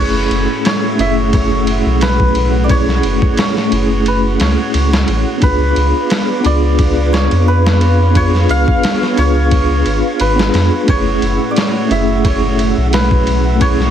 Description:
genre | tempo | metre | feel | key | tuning
trip hop | 88 BPM | 4/4 | swing 54% on 16ths | F# minor | A4 = 441 Hz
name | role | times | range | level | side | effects
santur | melody | 0.0-13.9 s | G#4 to E#5 | -19 LUFS | right 1 dB | dub echo
mellow tine electric piano | accompaniment | 0.0-13.9 s | A3 to G#4 | -17 LUFS | equal | medium stereo tremolo
string machine, cellos | sustained chords | 0.0-13.9 s | A3 to F#6 | -21 LUFS | left 1 dB | ensemble chorus
warm sub bass | bass | 0.0-13.9 s | F#1 to E#2 | -15 LUFS | equal | none
trip hop sampler-style drum kit | drums | 0.3-13.9 s | kick drum, ride cymbal, snare drum | -18 LUFS | equal | none
room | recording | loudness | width
light reverb, digital ambience | heavily compressed radio sound, multiband compression | -11 LUFS | side -9 dB against mid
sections
0.0-13.9 A section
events
none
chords
0.0 F#m7; 5.4 C#7b9; 10.9 F#m7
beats
0.65 1.33 2.02 | 2.70 3.38 4.06 4.74 | 5.42 6.11 6.79 7.47 | 8.15 8.84 9.52 10.20 | 10.88 11.56 12.24 12.93 | 13.61

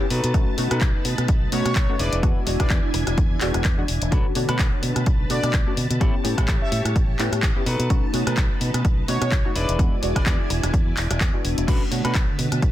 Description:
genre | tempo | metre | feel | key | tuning
filtered disco house | 127 BPM | 4/4 | swing 56% on 16ths | B minor | A4 = 442 Hz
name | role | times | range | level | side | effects
funky polysynth comp | accompaniment | 0.0-12.7 s | G#3 to C#5 | -29 LUFS | left 1 dB | chorus, phaser, sidechain pumping
string machine, full ensemble | sustained chords | 0.0-12.7 s | D3 to A5 | -31 LUFS | equal | ensemble chorus, sidechain pumping
clean electric guitar | riff | 0.0-12.6 s | D4 to C#5 | -30 LUFS | left 1 dB | sidechain pumping
fingered electric bass | bass | 0.1-12.7 s | E1 to B2 | -25 LUFS | equal | sidechain pumping
house drum kit | drums | 0.1-12.7 s | crash cymbal, handclaps, hi-hat, rim click | -28 LUFS | left 1 dB | sidechain pumping on hats, sidechain pumping on cymbals
electronic kick drum | drums | 0.3-12.7 s | none | -21 LUFS | equal | none
analog synth brass | melody | 1.5-10.3 s | C#5 to E5 | -30 LUFS | equal | chorus, cassette tape, sidechain pumping
room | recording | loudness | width
digital ambience | dense, heavily limited modern master | -19 LUFS | side -13 dB against mid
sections
0.0-12.7 A section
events
none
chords
0.1 B7; 2.0 E7; 4.1 Bm7; 6.0 A7; 7.7 B7; 9.6 E7; 11.7 Bm7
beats
| 0.34 0.81 1.29 1.76 | 2.23 2.71 3.18 3.65 | 4.12 4.59 5.07 5.54 | 6.01 6.48 6.96 7.43 | 7.90 8.37 8.85 9.32 | 9.79 10.26 10.74 11.21 | 11.68 12.15 12.63

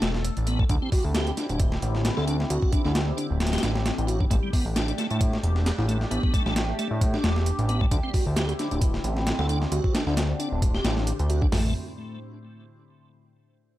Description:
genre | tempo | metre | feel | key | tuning
breakbeat, breaks | 133 BPM | 4/4 | swing 55% on 16ths | unclear | A4 = 440 Hz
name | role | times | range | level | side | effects
phased analog pad | sustained chords | 0.0-11.7 s | A2 to C5 | -33 LUFS | left 1 dB | phaser, chorus, sidechain pumping
tonewheel organ | riff | 0.0-11.7 s | G3 to A4 | -31 LUFS | equal | chorus vibrato, slow rotary speaker, overdrive, tape echo
fat analog bass | bass | 0.0-11.7 s | D1 to A2 | -26 LUFS | equal | none
dusty soul sampler-style drum kit | drums | 0.0-11.6 s | hi-hat, kick drum, snare drum, toms | -26 LUFS | equal | overdrive, studio reverb
room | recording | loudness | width
little or no reverb | dark, warm production | -22 LUFS | side -15 dB against mid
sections
0.0-11.5 A section; 11.5-13.3 B section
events
drop 0.0-11.5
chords
0.0 Asus4; 0.7 D9sus4; 4.3 A9sus4; 7.9 D9sus4; 11.5 N.C.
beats
0.25 | 0.70 1.15 1.60 2.05 | 2.50 2.95 3.40 3.86 | 4.31 4.76 5.21 5.66 | 6.11 6.56 7.01 7.46 | 7.92 8.37 8.82 9.27 | 9.72 10.17 10.62 11.07 | 11.53

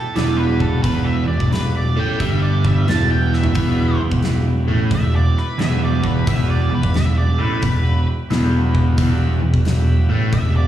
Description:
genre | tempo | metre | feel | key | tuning
blues rock power trio and southern rock | 88 BPM | 4/4 | swing 65% on 8ths | E minor | A4 = 440 Hz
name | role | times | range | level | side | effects
octave-fuzz lead guitar | melody | 0.0-10.7 s | A4 to A5 | -26 LUFS | right 1 dB | distortion, plate reverb, slapback echo
overdriven tonewheel organ | sustained chords | 0.0-10.7 s | B3 to E5 | -34 LUFS | right 4 dB | slow rotary speaker, plate reverb
crunchy overdriven guitar | riff | 0.2-10.7 s | E2 to A3 | -20 LUFS | right 1 dB | phaser, slapback echo
fuzz fingered electric bass | bass | 0.2-10.7 s | E1 to A1 | -18 LUFS | equal | overdrive
big rock drum kit | drums | 0.2-10.5 s | hi-hat, kick drum, snare drum, toms | -23 LUFS | equal | none
room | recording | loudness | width
light reverb | live gig heard through the venue's PA, recital hall reverb, studio ambience | -15 LUFS | side -11 dB against mid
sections
0.0-10.7 A section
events
drum fill 3.2-3.6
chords
0.0 Em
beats
0.16 | 0.84 1.52 2.20 2.88 | 3.56 4.24 4.92 5.60 | 6.28 6.95 7.63 8.30 | 8.98 9.65 10.32

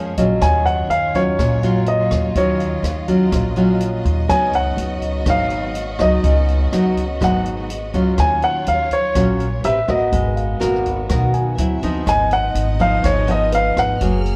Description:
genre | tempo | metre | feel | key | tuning
bossa nova | 124 BPM | 4/4 | straight | unclear | A4 = 440 Hz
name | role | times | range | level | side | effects
nylon-string guitar | accompaniment | 0.0-14.4 s | F2 to B4 | -23 LUFS | equal | none
tine electric piano | accompaniment | 0.0-14.2 s | Cb5 to Ab5 | -31 LUFS | equal | none
warm symphonic string section | sustained chords | 0.0-14.4 s | Gb3 to F6 | -32 LUFS | equal | none
upright bass | bass | 0.2-14.4 s | Gb1 to Eb2 | -24 LUFS | equal | none
open jazz drum kit | drums | 0.2-14.4 s | hi-hat, kick drum, rim click | -28 LUFS | equal | none
warm baby grand piano | melody | 0.4-14.4 s | Db5 to Ab5 | -22 LUFS | equal | none
room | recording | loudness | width
light reverb | worn, warbling old tape, cassette tape, warbly pitch drift | -18 LUFS | mono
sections
0.4-14.4 A section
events
none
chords
0.0 Bbm7; 4.3 Db9sus4; 8.2 Ebm9; 9.6 Am9; 10.1 Abm9; 11.6 D9; 12.1 Abm6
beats
| 0.41 0.89 1.38 1.86 | 2.35 2.83 3.32 3.81 | 4.29 4.78 5.26 5.75 | 6.23 6.72 7.21 7.69 | 8.18 8.66 9.15 9.64 | 10.12 10.61 11.09 11.58 | 12.07 12.55 13.04 13.53 | 14.01

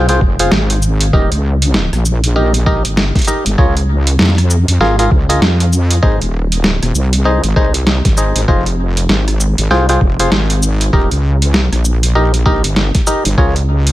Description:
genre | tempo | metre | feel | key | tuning
glitch hop | 98 BPM | 4/4 | swing 60% on 16ths | unclear | A4 = 440 Hz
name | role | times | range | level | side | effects
clav | stabs | 0.0-13.5 s | Eb4 to G5 | -17 LUFS | equal | sidechain pumping, dub echo
wobble bass | bass | 0.0-13.9 s | Eb1 to F2 | -13 LUFS | equal | chorus
boom bap sampler-style drum kit | drums | 0.1-13.9 s | hi-hat, rim click, shaker, snare drum | -16 LUFS | equal | studio ambience
electronic kick drum | drums | 0.2-13.5 s | none | -14 LUFS | equal | studio ambience
room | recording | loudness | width
little or no reverb | none | -11 LUFS | side -16 dB against mid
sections
0.0-13.9 A section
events
none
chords
0.0 Fm; 1.1 Eb; 3.6 Db6; 6.0 Ab; 8.5 Fm; 10.9 Eb; 13.4 Db6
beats
0.52 | 1.13 1.75 2.36 2.97 | 3.58 4.20 4.81 5.42 | 6.03 6.64 7.26 7.87 | 8.48 9.09 9.71 10.32 | 10.93 11.54 12.15 12.77 | 13.38

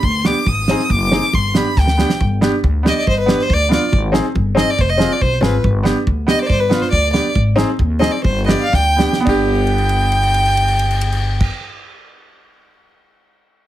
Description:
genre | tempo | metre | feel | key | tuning
klezmer | 105-140 BPM | 2/4 | straight | G phrygian dominant | A4 = 441 Hz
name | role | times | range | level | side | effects
rich violin | melody | 0.0-11.5 s | B4 to Eb6 | -18 LUFS | equal | none
upright bass | bass | 0.0-11.5 s | F1 to Eb2 | -18 LUFS | left 1 dB | none
damped 70s drum kit | drums | 0.0-13.0 s | crash cymbal, kick drum, ride cymbal, snare drum | -19 LUFS | right 1 dB | none
bright upright piano | accompaniment | 0.3-11.5 s | B3 to Ab4 | -20 LUFS | right 1 dB | none
room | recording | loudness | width
light reverb | heavily compressed radio sound | -13 LUFS | side -13 dB against mid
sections
0.0-2.2 A section; 2.2-9.3 B section; 9.3-11.6 C section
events
violin solo 0.0-2.2; drum fill 1.8-2.2, 8.7-9.3, 9.6-11.4; slowing down 7.4-9.3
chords
0.5 Ab; 1.3 G; 3.9 Ab; 4.8 Fm; 5.6 G; 7.4 Ab; 8.2 G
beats
0.03 | 0.46 0.90 | 1.33 1.76 | 2.20 2.63 | 3.06 3.49 | 3.92 4.35 | 4.78 5.21 | 5.64 6.07 | 6.50 6.92 | 7.35 7.79 | 8.24 8.73 | 9.27 9.84 | 10.41 10.98

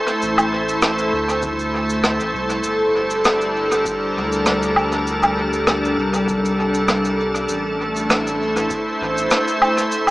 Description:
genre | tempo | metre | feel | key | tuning
ambient dub | 99 BPM | 4/4 | swing 54% on 16ths | G dorian | A4 = 435 Hz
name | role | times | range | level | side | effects
soft additive organ-like pad | sustained chords | 0.0-10.1 s | G3 to C5 | -18 LUFS | equal | ensemble chorus, built-in reverb
cabasa, woodblock and rim click | drums | 0.1-10.1 s | none | -21 LUFS | equal | dub echo
soft dub sub bass | bass | 0.2-9.3 s | G1 to D2 | -29 LUFS | equal | none
electronic kick drum | drums | 1.4-8.8 s | none | -35 LUFS | equal | overdrive
room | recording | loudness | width
light reverb, small room ambience | echo-heavy mix, small speaker sound | -17 LUFS | side -18 dB against mid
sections
0.0-10.1 A section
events
none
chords
0.0 Am; 2.6 Gmadd9; 7.5 Am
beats
| 0.22 0.82 1.43 2.04 | 2.64 3.25 3.85 4.46 | 5.07 5.67 6.28 6.89 | 7.49 8.10 8.70 9.31 | 9.92

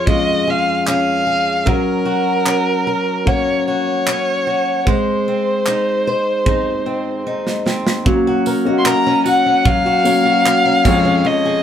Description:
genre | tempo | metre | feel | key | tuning
acoustic pop | 75 BPM | 4/4 | straight | unclear | A4 = 440 Hz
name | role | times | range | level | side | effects
dark violin | melody | 0.0-11.6 s | Bb4 to C6 | -17 LUFS | equal | none
dark upright piano | accompaniment | 0.0-11.6 s | F2 to Gb5 | -20 LUFS | left 4 dB | none
picked steel-string acoustic guitar | accompaniment | 0.0-11.6 s | F2 to C5 | -20 LUFS | right 1 dB | none
modern studio drum kit | drums | 0.1-11.0 s | crash cymbal, handclaps, kick drum, snare drum, tambourine | -18 LUFS | right 1 dB | none
room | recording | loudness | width
wet studio ambience, RT60 0.5 s | heard from further back in the room | -14 LUFS | side -9 dB against mid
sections
0.0-8.1 A section; 8.1-11.6 B section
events
drum fill 7.3-8.1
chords
0.0 Db/F; 1.7 Gb; 4.9 Ab; 8.1 Gb; 10.9 Db/F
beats
0.08 0.87 | 1.67 2.47 3.27 4.07 | 4.87 5.66 6.46 7.26 | 8.06 8.86 9.65 10.45 | 11.25

